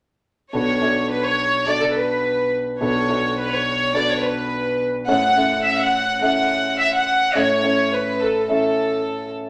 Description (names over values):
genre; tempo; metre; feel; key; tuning
pop; 106 BPM; 4/4; straight; unclear; A4 = 440 Hz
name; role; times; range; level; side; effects
warm studio violin section; melody; 0.5-9.3 s; A4 to F#5; -22 LUFS; equal; none
warm concert grand piano; accompaniment; 0.5-9.5 s; A1 to E5; -25 LUFS; equal; none
room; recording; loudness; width
wet studio reverb, RT60 0.9 s; none; -20 LUFS; mono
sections
0.5-9.5 A section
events
none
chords
0.5 Bm7; 5.1 A